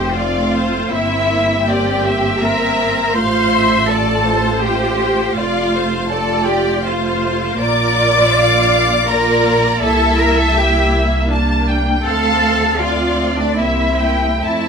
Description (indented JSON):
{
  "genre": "classical, slow romantic movement for string orchestra",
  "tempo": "80 BPM",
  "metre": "3/4",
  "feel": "rubato",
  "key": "F major",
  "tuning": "A4 = 440 Hz",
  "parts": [
    { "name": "rich studio violin section", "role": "melody", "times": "0.0-14.7 s", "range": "Bb4 to A5", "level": "-20 LUFS", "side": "left 2 dB", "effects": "none" },
    { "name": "warm studio violin section", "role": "second line", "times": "0.0-14.7 s", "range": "D5 to D6", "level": "-20 LUFS", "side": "left 2 dB", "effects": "none" },
    { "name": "rich studio viola section", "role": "accompaniment", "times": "0.0-14.7 s", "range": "A3 to F4", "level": "-20 LUFS", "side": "right 3 dB", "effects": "none" },
    { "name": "rich studio cello section", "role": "bass", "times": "0.0-14.7 s", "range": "D4 to D5", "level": "-18 LUFS", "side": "equal", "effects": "none" },
    { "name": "rich studio double bass section", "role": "bass", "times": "0.0-14.7 s", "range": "F1 to F2", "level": "-22 LUFS", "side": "right 1 dB", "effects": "none" }
  ],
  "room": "moderate large studio reverb, RT60 0.9 s",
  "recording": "minimal, uncompressed stereo recording",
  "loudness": "-13 LUFS",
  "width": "side -6 dB against mid",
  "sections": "0.0-14.7 A section",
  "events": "none",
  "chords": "0.0 F; 0.9 C7/G; 3.2 F/A; 5.4 F; 7.6 Bb; 9.8 C7; 12.1 Dm7; 13.6 C7",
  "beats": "0.16 | 0.92 1.67 2.42 | 3.16 3.90 4.64 | 5.37 6.10 6.83 | 7.59 8.33 9.07 | 9.82 10.56 11.31 | 12.06 12.81 13.60 | 14.42"
}